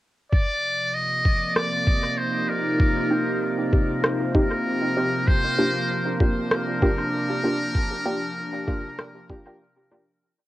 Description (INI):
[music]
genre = ambient dub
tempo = 97 BPM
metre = 4/4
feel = swing 55% on 16ths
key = C minor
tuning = A4 = 439 Hz
[part]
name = trumpet with metal mute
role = melody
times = 0.3-9.6 s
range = Bb4 to Eb5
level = -26 LUFS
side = equal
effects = cassette tape, dub echo
[part]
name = warbly tape-like pad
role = sustained chords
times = 0.3-10.2 s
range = C3 to Eb4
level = -27 LUFS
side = equal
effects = chorus, built-in reverb, phaser, cassette tape
[part]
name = electronic kick drum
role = drums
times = 0.3-9.4 s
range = none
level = -21 LUFS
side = equal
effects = cassette tape
[part]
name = electronic rim click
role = drums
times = 1.6-9.1 s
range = none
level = -26 LUFS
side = equal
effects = cassette tape, dub echo
[part]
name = filtered dub chord stab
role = stabs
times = 3.1-10.1 s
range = Bb3 to G4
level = -27 LUFS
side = equal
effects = chorus, cassette tape, dub echo
[sound]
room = light reverb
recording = home recording on cassette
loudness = -21 LUFS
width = side -16 dB against mid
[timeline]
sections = 0.3-10.2 groove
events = fade-out 6.9-10.2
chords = 0.3 Cm; 5.3 Gm7/C